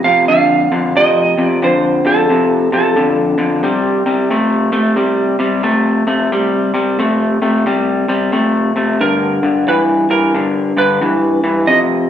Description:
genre	blues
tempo	90 BPM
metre	4/4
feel	swing 64% on 8ths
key	C mixolydian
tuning	A4 = 440 Hz
part	clean lap steel guitar	melody	0.0-3.6, 9.0-11.8 s	A4 to F5	-15 LUFS	right 2 dB	none
part	electric guitar through a small old amp	riff	0.0-12.1 s	F2 to A3	-13 LUFS	left 1 dB	none
room	wet large studio reverb, RT60 1.2 s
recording	band playing live in one room, nothing above 10.3 kHz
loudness	-12 LUFS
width	side -9 dB against mid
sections	0.0-12.1 A section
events	none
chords	0.0 F; 3.6 C5; 9.0 G

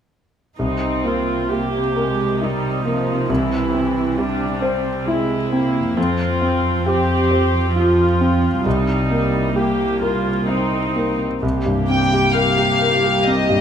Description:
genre	cinematic, emotional film score for orchestra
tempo	67 BPM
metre	3/4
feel	rubato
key	C minor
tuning	A4 = 441 Hz
part	clear concert grand piano	accompaniment	0.6-13.6 s	C2 to C5	-20 LUFS	left 1 dB	none
part	warm studio viola section	accompaniment	0.6-13.6 s	E3 to G4	-21 LUFS	right 1 dB	none
part	warm studio cello section	bass	0.6-13.6 s	C2 to C3	-24 LUFS	right 2 dB	none
part	warm studio violin section	melody	11.9-13.6 s	Eb5 to G5	-18 LUFS	left 3 dB	none
room	light reverb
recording	close, detailed microphones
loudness	-16 LUFS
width	side -8 dB against mid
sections	0.6-11.4 A section; 11.4-13.6 B section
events	none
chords	0.6 Cm7; 3.3 C; 6.0 Fsus2; 8.7 Cm7; 11.4 C7(no3)

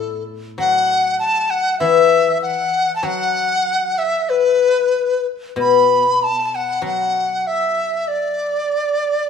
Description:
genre	chinese traditional, Chinese chamber ensemble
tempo	97 BPM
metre	4/4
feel	rubato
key	unclear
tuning	A4 = 441 Hz
part	mellow dizi	melody	0.0-9.3 s	A4 to B5	-16 LUFS	left 2 dB	none
part	guzheng	accompaniment	0.0-8.7 s	A2 to F#3	-20 LUFS	left 9 dB	none
room	light reverb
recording	none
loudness	-15 LUFS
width	side -6 dB against mid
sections	0.0-9.3 A section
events	none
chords	none

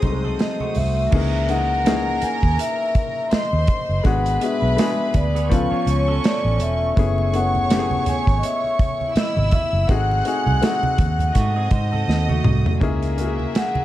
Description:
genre	lush 1970s-style soul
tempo	82 BPM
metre	4/4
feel	swing 58% on 16ths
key	unclear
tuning	A4 = 440 Hz
part	vibraphone with soft mallets	melody	0.0-13.8 s	G#4 to G#5	-24 LUFS	left 1 dB	none
part	rich studio violin section	second line	0.0-13.8 s	A#3 to F#6	-29 LUFS	right 1 dB	tape echo
part	warm baby grand piano	accompaniment	0.0-13.8 s	E3 to A4	-26 LUFS	left 6 dB	none
part	electric guitar through a small old amp	riff	0.0-6.9, 11.3-12.8 s	A3 to C#5	-31 LUFS	right 6 dB	none
part	vintage muted fingered electric bass	bass	0.0-13.8 s	E1 to G#2	-22 LUFS	equal	none
part	modern studio drum kit	drums	0.0-13.8 s	crash cymbal, hi-hat, kick drum, snare drum, toms	-22 LUFS	right 1 dB	none
part	congas	percussion	0.0-1.0, 7.0-13.8 s	none	-28 LUFS	right 3 dB	none
room	light reverb, small room ambience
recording	dark, warm production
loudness	-17 LUFS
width	side -14 dB against mid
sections	0.0-1.1 A section; 1.1-12.8 B section; 12.8-13.8 C section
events	drum fill 12.1-12.8; vibraphone solo 12.8-13.8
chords	0.0 G#7b9; 1.1 C#m69; 4.0 G#m7b5; 5.5 C#7alt; 7.0 F#m11; 9.9 G#7b9; 12.8 C#m69

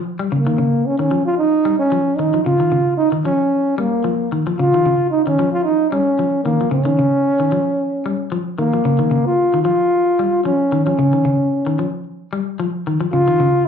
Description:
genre	afrobeat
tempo	112 BPM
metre	4/4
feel	swing 55% on 16ths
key	Bb dorian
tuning	A4 = 441 Hz
part	clean electric guitar	arpeggios	0.0-13.6 s	Db3 to G3	-20 LUFS	left 2 dB	slapback echo
part	breathy trombone	melody	0.3-13.7 s	Bb3 to F4	-16 LUFS	right 1 dB	slapback echo, plate reverb
room	moderate club reverb, RT60 0.7 s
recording	live gig heard through the venue's PA, club reverb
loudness	-15 LUFS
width	side -7 dB against mid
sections	0.3-13.7 A section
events	none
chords	0.3 Bbm (rootless)

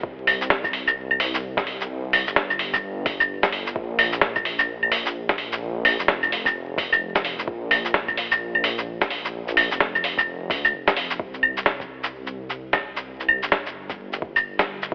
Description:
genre	future garage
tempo	129 BPM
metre	4/4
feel	swing 61% on 16ths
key	unclear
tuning	A4 = 439 Hz
part	dark detuned saw bass	bass	0.0-14.9 s	F1 to D2	-31 LUFS	equal	sidechain pumping
part	electronic kick drum	drums	0.0-14.9 s	none	-31 LUFS	equal	overdrive, vintage 12-bit sampler grit
part	lo-fi sampler-style drum kit	drums	0.3-14.9 s	claves, hi-hat, shaker, snare drum	-20 LUFS	equal	vintage 12-bit sampler grit
room	light reverb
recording	vinyl crackle, telephone sound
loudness	-20 LUFS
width	side -37 dB against mid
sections	0.0-11.2 A section; 11.2-14.9 B section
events	none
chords	none

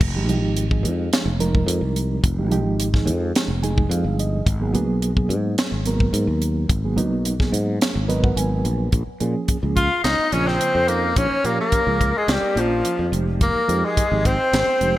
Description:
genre	electric jazz fusion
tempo	108 BPM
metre	4/4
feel	straight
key	F minor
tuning	A4 = 439 Hz
part	sustaining fretless electric bass	bass	0.0-15.0 s	F1 to Bb2	-23 LUFS	equal	wide subtle chorus
part	tight funk drum kit	drums	0.0-14.9 s	crash cymbal, hi-hat, kick drum, snare drum	-22 LUFS	equal	gated reverb
part	mellow reed electric piano	accompaniment	0.2-15.0 s	Db3 to Ab5	-25 LUFS	right 3 dB	fast tremolo
part	breathy tenor saxophone	melody	9.8-15.0 s	F3 to F4	-21 LUFS	left 1 dB	none
part	bright silver concert flute	second line	9.8-15.0 s	F4 to F5	-25 LUFS	left 3 dB	digital delay
room	light reverb, small room ambience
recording	bright 1980s-style digital production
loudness	-18 LUFS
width	side -15 dB against mid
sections	0.0-8.9 A section; 8.9-15.0 B section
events	reed electric piano fill 3.3-4.5, 7.8-8.9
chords	0.0 Fm9; 4.5 Abm9; 8.9 Bbm7; 13.1 Fm9

